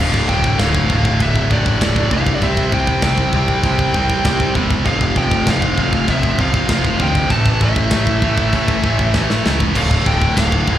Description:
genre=heavy metal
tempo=98 BPM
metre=4/4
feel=straight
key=D minor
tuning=A4 = 441 Hz
part: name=high-gain lead guitar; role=melody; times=0.0-10.8 s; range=D5 to A5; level=-22 LUFS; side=equal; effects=distortion
part: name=high-gain distorted guitar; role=riff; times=0.0-10.8 s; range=D2 to C4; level=-18 LUFS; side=right 1 dB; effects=distortion, slapback echo
part: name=fuzz picked electric bass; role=bass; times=0.0-10.8 s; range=D1 to D2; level=-19 LUFS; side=equal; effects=overdrive
part: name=tight metal drum kit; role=drums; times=0.1-10.8 s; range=china cymbal, crash cymbal, kick drum, snare drum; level=-19 LUFS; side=equal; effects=none
room=small room ambience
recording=live gig heard through the venue's PA, club reverb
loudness=-13 LUFS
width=side -11 dB against mid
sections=0.0-10.8 A section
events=drum fill 9.1-9.8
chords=0.0 Dm; 2.4 C5; 4.9 F5; 7.3 A5; 9.8 Dm

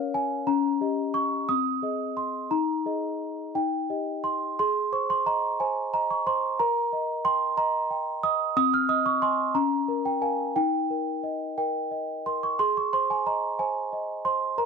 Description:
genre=classical, lullaby for celesta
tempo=60 BPM (dotted quarters)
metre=6/8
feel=straight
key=Ab major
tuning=A4 = 444 Hz
part: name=celesta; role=solo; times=0.0-14.7 s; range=C4 to F6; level=-24 LUFS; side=right 1 dB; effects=none
room=light reverb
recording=dark, warm production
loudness=-24 LUFS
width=side -5 dB against mid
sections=0.0-4.6 A section; 4.6-14.7 B section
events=none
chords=0.5 Eb7/Db; 1.5 Ab/C; 2.5 Ebsus4; 3.5 Eb; 4.6 Ab; 6.6 Eb/Bb; 8.6 Ab/C; 9.5 Bbm/Db; 10.6 Eb; 12.6 Ab

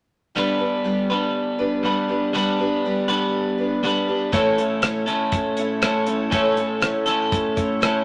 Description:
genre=folk rock and heartland rock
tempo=120 BPM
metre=4/4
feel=straight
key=unclear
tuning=A4 = 440 Hz
part: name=picked twelve-string acoustic guitar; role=accompaniment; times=0.3-8.0 s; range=A2 to C#5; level=-26 LUFS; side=equal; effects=none
part: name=electric guitar at the edge of break-up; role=riff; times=0.4-8.0 s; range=A2 to B4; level=-24 LUFS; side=equal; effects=none
part: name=damped 70s drum kit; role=drums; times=4.3-7.9 s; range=hi-hat, kick drum, rim click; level=-26 LUFS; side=equal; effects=none
room=moderate studio reverb, RT60 0.6 s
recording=none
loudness=-22 LUFS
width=mono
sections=0.3-8.0 A section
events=none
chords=0.3 G; 4.3 A

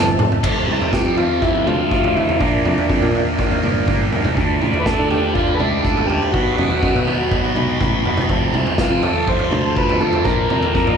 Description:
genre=psychedelic rock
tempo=122 BPM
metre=4/4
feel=straight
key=unclear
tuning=A4 = 440 Hz
part: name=percussive tonewheel organ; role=sustained chords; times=0.0-11.0 s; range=F3 to B5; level=-28 LUFS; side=right 4 dB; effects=none
part: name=thick fuzz guitar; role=riff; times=0.0-11.0 s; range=F2 to D4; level=-20 LUFS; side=equal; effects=distortion, phaser
part: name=picked electric bass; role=bass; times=0.0-11.0 s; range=F1 to D3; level=-22 LUFS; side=equal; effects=none
part: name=vintage drum kit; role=drums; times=0.2-11.0 s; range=crash cymbal, kick drum, snare drum, toms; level=-20 LUFS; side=equal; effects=none
part: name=combo organ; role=melody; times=0.9-11.0 s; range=D4 to C5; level=-22 LUFS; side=equal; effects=analog delay
room=moderate huge ambient reverb, RT60 6.9 s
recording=dreamy mix soaked in reverb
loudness=-15 LUFS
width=side -7 dB against mid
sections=0.4-11.0 A section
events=drum fill 0.0-0.4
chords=0.4 F; 2.4 Bb; 4.4 Dm; 6.3 B; 8.3 F; 10.3 Bb

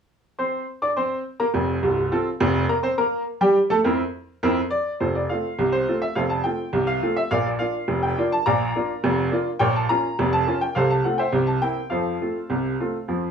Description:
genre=ragtime piano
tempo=104 BPM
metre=2/4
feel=straight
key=F major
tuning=A4 = 440 Hz
part: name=bright baby grand piano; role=solo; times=0.4-13.3 s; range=C1 to D6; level=-20 LUFS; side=equal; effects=none
room=moderate club reverb, RT60 0.5 s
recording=worn, warbling old tape, cassette tape, warbly pitch drift, small room ambience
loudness=-20 LUFS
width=side -7 dB against mid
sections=0.4-5.0 A section; 5.0-13.3 B section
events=none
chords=0.4 F5; 2.7 C7; 5.0 F; 7.3 Bb; 9.6 Bbm; 10.8 F/C; 11.3 C7; 11.9 F

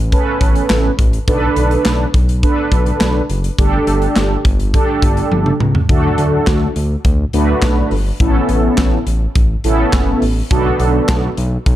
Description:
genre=synth-pop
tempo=104 BPM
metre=4/4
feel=straight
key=unclear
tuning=A4 = 441 Hz
part: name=smooth synth bass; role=bass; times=0.0-11.8 s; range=F#1 to D2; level=-17 LUFS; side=equal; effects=none
part: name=mellow synth brass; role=accompaniment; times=0.1-11.3 s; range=A3 to B4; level=-17 LUFS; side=right 1 dB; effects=chorus
part: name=modern studio drum kit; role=drums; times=0.1-11.8 s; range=handclaps, hi-hat, kick drum, snare drum, toms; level=-16 LUFS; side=equal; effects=none
room=light reverb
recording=dark, warm production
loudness=-12 LUFS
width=side -13 dB against mid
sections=0.0-5.9 A section; 5.9-11.8 B section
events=drum fill 5.3-5.9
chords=0.0 Aadd9; 1.3 Bm7; 3.6 Gsus2; 5.9 D; 8.2 Aadd9; 10.5 Bm7

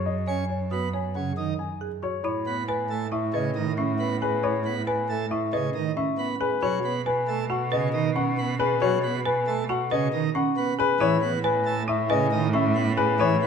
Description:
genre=classical, minimalist pattern music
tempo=137 BPM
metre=5/4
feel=straight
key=unclear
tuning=A4 = 440 Hz
part: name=dark grand piano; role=melody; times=0.0-13.5 s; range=B4 to G#5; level=-28 LUFS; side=left 10 dB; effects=none
part: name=folk marimba with hard mallets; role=arpeggios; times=0.0-13.5 s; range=C#4 to C#5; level=-30 LUFS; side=right 7 dB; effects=none
part: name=large celesta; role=arpeggios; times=0.0-13.5 s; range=G#5 to D#6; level=-32 LUFS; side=left 5 dB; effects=none
part: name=rich cello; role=bass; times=0.0-13.5 s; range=F#2 to B2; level=-30 LUFS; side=right 3 dB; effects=none
part: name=pipe organ, plenum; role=accompaniment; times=0.3-13.5 s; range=C#3 to C#4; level=-29 LUFS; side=right 4 dB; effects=none
room=moderate recital hall reverb, RT60 1.4 s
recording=none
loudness=-23 LUFS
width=side -6 dB against mid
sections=0.0-2.2 A section; 2.2-13.5 B section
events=none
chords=0.0 G#m7/F#; 2.2 Amaj9; 6.6 B9; 11.0 Amaj9

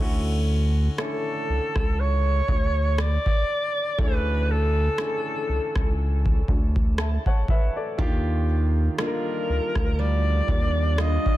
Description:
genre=contemporary R&B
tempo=60 BPM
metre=4/4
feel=swing 54% on 16ths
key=unclear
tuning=A4 = 440 Hz
part: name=warm baby grand piano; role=accompaniment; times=0.0-11.4 s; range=D3 to A5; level=-32 LUFS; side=left 2 dB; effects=none
part: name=rubbery square bass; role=bass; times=0.0-11.2 s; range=C#2 to Eb2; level=-22 LUFS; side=equal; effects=none
part: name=warm alto saxophone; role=melody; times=1.0-11.4 s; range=A4 to Eb5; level=-27 LUFS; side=equal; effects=ping-pong delay
part: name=booming analog drum machine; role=drums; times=1.0-11.4 s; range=kick drum, rim click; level=-24 LUFS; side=equal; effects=overdrive, soft clipping on snare
part: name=fingerpicked steel-string acoustic guitar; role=arpeggios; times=8.0-11.4 s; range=Eb3 to F4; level=-32 LUFS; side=right 6 dB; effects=ping-pong delay
part: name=swell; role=sound effects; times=10.1-11.4 s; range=none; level=-34 LUFS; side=equal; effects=none
room=studio reverb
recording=dense, heavily limited modern master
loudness=-21 LUFS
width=side -15 dB against mid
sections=0.0-11.4 A section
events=grand piano fill 6.5-8.0; swell 10.1-11.4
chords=0.0 Dmaj9; 8.0 Ebmaj9

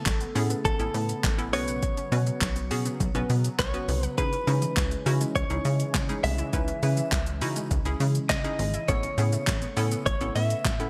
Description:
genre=dance-pop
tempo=102 BPM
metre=4/4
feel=straight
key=C# minor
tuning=A4 = 440 Hz
part: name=direct-recorded clean electric guitar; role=melody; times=0.0-10.9 s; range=A4 to E5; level=-34 LUFS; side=equal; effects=subtle chorus
part: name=hollow square pluck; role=accompaniment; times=0.0-10.9 s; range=B3 to B4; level=-36 LUFS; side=equal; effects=chorus, sidechain pumping
part: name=sweeping resonant pad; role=sustained chords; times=0.0-10.9 s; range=C#3 to C#4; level=-40 LUFS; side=equal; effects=chorus, sidechain pumping
part: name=unison pluck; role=arpeggios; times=0.0-10.9 s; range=E3 to F#5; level=-42 LUFS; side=equal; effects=none
part: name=plucky analog bass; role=bass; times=0.1-10.9 s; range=G#1 to C#3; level=-30 LUFS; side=equal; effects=sidechain pumping
part: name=deep house drum kit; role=drums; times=0.1-10.9 s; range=handclaps, hi-hat, kick drum, shaker, snare drum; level=-32 LUFS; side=equal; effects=overdrive
part: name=group handclap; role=percussion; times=0.1-10.8 s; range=none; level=barely audible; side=none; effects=none
room=light reverb, digital ambience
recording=bright 1980s-style digital production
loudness=-27 LUFS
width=mono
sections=0.0-10.9 A section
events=none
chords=0.0 Aadd9; 1.5 Bsus2; 4.2 C#madd9; 8.9 Aadd9

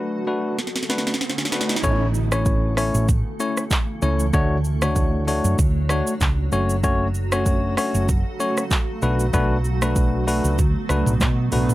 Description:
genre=afrobeats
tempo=96 BPM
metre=4/4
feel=swing 55% on 16ths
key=A major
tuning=A4 = 440 Hz
part: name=bell-like tine electric piano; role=accompaniment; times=0.0-11.7 s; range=A3 to C#5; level=-23 LUFS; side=left 2 dB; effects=none
part: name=granular cloud pad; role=sustained chords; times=0.0-11.7 s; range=C#3 to C#5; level=-30 LUFS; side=right 2 dB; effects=built-in reverb
part: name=riser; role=sound effects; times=0.4-1.8 s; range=none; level=-34 LUFS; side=right 5 dB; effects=none
part: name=afro-pop drum kit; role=drums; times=0.6-11.7 s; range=handclaps, hi-hat, kick drum, rim click, shaker, snare drum, toms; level=-22 LUFS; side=right 1 dB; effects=none
part: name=hollow-body short-scale fingered electric bass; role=bass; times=1.8-11.7 s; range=F#1 to B2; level=-22 LUFS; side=right 1 dB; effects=none
room=little or no reverb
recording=none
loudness=-18 LUFS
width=side -16 dB against mid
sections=0.0-1.8 A section; 1.8-11.7 B section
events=riser 0.4-1.8; drum fill 0.6-1.8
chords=0.0 Bm7; 1.8 A; 4.3 Dmaj7; 6.5 F#m; 9.0 Bm7

